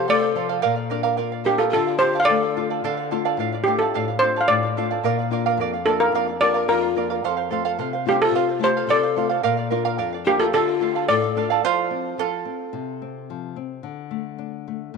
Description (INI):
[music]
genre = andean folk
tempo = 109 BPM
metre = 2/4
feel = straight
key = D minor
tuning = A4 = 441 Hz
[part]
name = steel pan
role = melody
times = 0.0-11.5 s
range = G4 to F5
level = -21 LUFS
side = equal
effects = none
[part]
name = breathy mellow pan flute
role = second line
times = 0.0-2.7, 6.4-11.5 s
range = D4 to C5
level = -26 LUFS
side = left 10 dB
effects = none
[part]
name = charango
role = accompaniment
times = 0.0-13.5 s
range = F4 to F5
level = -24 LUFS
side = right 12 dB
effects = none
[part]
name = nylon-string guitar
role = accompaniment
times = 0.0-15.0 s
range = F2 to F4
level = -28 LUFS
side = left 11 dB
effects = none
[sound]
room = moderate plate reverb, RT60 2.9 s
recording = 1960s-style stereo with parts hard left and right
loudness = -19 LUFS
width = side -5 dB against mid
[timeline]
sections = 0.0-2.8 A section; 2.8-11.6 A section; 11.6-15.0 B section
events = charango solo 11.6-15.0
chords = 0.0 F; 0.6 Bb; 1.7 Dm; 5.0 Bb; 7.2 F; 9.4 Bb; 10.5 Dm; 11.6 F; 13.8 D5